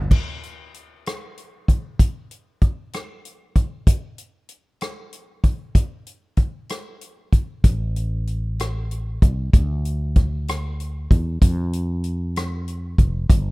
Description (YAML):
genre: six-eight pop ballad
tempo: 64 BPM (dotted quarters)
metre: 6/8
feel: straight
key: unclear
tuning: A4 = 440 Hz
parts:
  - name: fretless electric bass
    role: bass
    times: 0.0-0.1, 7.6-13.5 s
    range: F1 to F2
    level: -24 LUFS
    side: equal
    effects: none
  - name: natural country drum kit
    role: drums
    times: 0.1-13.4 s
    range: crash cymbal, hi-hat, kick drum, rim click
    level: -17 LUFS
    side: equal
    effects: none
room: little or no reverb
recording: rough home demo mix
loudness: -19 LUFS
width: side -24 dB against mid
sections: 0.1-13.5 A section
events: none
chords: none